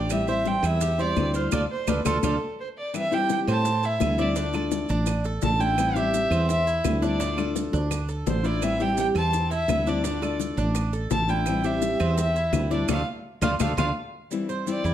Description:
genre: latin, Cuban son and guajira.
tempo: 169 BPM.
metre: 4/4.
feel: straight.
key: A minor.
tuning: A4 = 440 Hz.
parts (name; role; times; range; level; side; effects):
warm violin; melody; 0.0-14.9 s; A4 to A5; -27 LUFS; right 1 dB; plate reverb.
flamenco guitar; accompaniment; 0.0-14.9 s; D3 to F4; -29 LUFS; left 4 dB; none.
Cuban tres; arpeggios; 0.0-14.9 s; A3 to C5; -31 LUFS; right 4 dB; none.
woody fretless electric bass; bass; 0.0-14.9 s; A1 to A2; -26 LUFS; right 1 dB; none.
bongos; percussion; 0.1-13.9 s; none; -32 LUFS; left 6 dB; none.
claves; percussion; 0.1-13.9 s; none; -38 LUFS; right 8 dB; none.
maracas; percussion; 0.1-14.9 s; none; -40 LUFS; right 10 dB; none.
room: moderate large studio reverb, RT60 0.9 s.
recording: none.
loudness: -22 LUFS.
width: side -11 dB against mid.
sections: 0.0-2.9 A section; 2.9-14.3 B section.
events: band accent 1.5-2.9, 12.9-14.3; drum fill 2.2-2.9.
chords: 0.1 Am7; 1.5 Dm; 2.9 Am7; 4.4 Dm; 5.8 Am7; 7.2 Dm; 8.6 Am7; 10.0 Dm; 11.5 Am7; 12.9 Dm; 14.3 D9sus4.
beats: | 0.10 0.46 0.81 1.17 | 1.52 1.88 2.23 2.59 | 2.94 3.30 3.65 4.01 | 4.36 4.72 5.07 5.43 | 5.78 6.14 6.49 6.85 | 7.20 7.56 7.91 8.27 | 8.62 8.98 9.33 9.69 | 10.04 10.40 10.75 11.11 | 11.46 11.82 12.18 12.53 | 12.89 13.24 13.60 13.96 | 14.31 14.67.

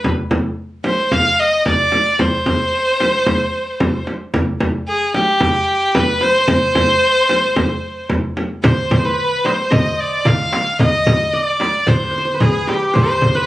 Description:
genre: Arabic maqam ensemble.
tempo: 112 BPM.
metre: 4/4.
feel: straight.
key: C maqam nahawand.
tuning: A4 = 440 Hz.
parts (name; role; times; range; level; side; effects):
clear violin; melody; 0.0-13.5 s; G4 to F5; -16 LUFS; equal; none.
frame drum; percussion; 0.0-13.3 s; none; -18 LUFS; equal; none.
qanun; second line; 8.6-13.5 s; G4 to F5; -21 LUFS; right 1 dB; none.
darbuka; percussion; 8.7-13.3 s; none; -20 LUFS; equal; none.
room: wet small room reverb, RT60 0.6 s.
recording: recorded on a phone in the room, studio ambience, compression.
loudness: -14 LUFS.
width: side -16 dB against mid.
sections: 0.0-8.6 A section; 8.6-13.5 B section.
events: none.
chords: none.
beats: | 0.04 0.58 1.12 1.66 | 2.19 2.73 3.27 3.81 | 4.34 4.88 5.42 5.96 | 6.50 7.03 7.57 8.11 | 8.65 9.19 9.72 10.26 | 10.80 11.34 11.87 12.41 | 12.95.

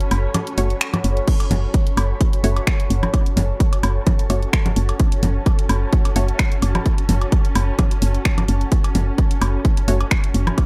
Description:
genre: minimal techno.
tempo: 129 BPM.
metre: 4/4.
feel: swing 54% on 16ths.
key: F# minor.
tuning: A4 = 440 Hz.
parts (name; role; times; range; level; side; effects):
house drum kit; drums; 0.0-10.7 s; crash cymbal, finger snaps, hi-hat; -29 LUFS; equal; overdrive.
granular cloud pad; texture; 0.0-10.7 s; F#4 to B5; -32 LUFS; equal; built-in reverb, sidechain pumping.
swarming drone; texture; 0.0-10.7 s; C#4; -36 LUFS; equal; built-in reverb, sidechain pumping.
woody FM bass; bass; 0.1-10.5 s; F#1; -21 LUFS; equal; sidechain pumping.
woodblock, cowbell and congas; percussion; 0.1-10.7 s; none; -27 LUFS; equal; dub echo.
filtered dub chord stab; stabs; 0.6-6.3, 9.9-10.0 s; A3 to C#5; -30 LUFS; equal; chorus, dub echo.
electronic kick drum; drums; 1.3-10.7 s; none; -20 LUFS; equal; overdrive.
room: little or no reverb.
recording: none.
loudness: -19 LUFS.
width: mono.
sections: 0.0-10.7 A section.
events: kick drops out 0.3-1.3.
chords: 0.0 F#m.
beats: 0.34 0.81 | 1.27 1.74 2.21 2.67 | 3.14 3.60 4.07 4.53 | 5.00 5.46 5.93 6.39 | 6.86 7.32 7.79 8.25 | 8.72 9.18 9.65 10.11 | 10.58.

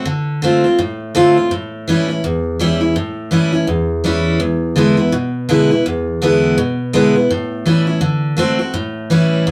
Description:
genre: rock.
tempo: 166 BPM.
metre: 4/4.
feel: swing 60% on 8ths.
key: A mixolydian.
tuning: A4 = 440 Hz.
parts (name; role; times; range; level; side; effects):
picked steel-string acoustic guitar; solo; 0.0-9.5 s; E2 to F#4; -16 LUFS; equal; none.
room: moderate studio reverb, RT60 0.5 s.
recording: band playing live in one room.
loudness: -16 LUFS.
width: mono.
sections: 0.0-9.5 A section.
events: none.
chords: 0.1 Dm7; 1.5 A7; 4.4 E7; 7.3 A7; 8.0 D7; 8.7 A7.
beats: | 0.08 0.44 0.80 1.16 | 1.52 1.88 2.24 2.60 | 2.96 3.32 3.69 4.05 | 4.41 4.77 5.13 5.49 | 5.85 6.21 6.57 6.93 | 7.30 7.66 8.02 8.38 | 8.74 9.10 9.46.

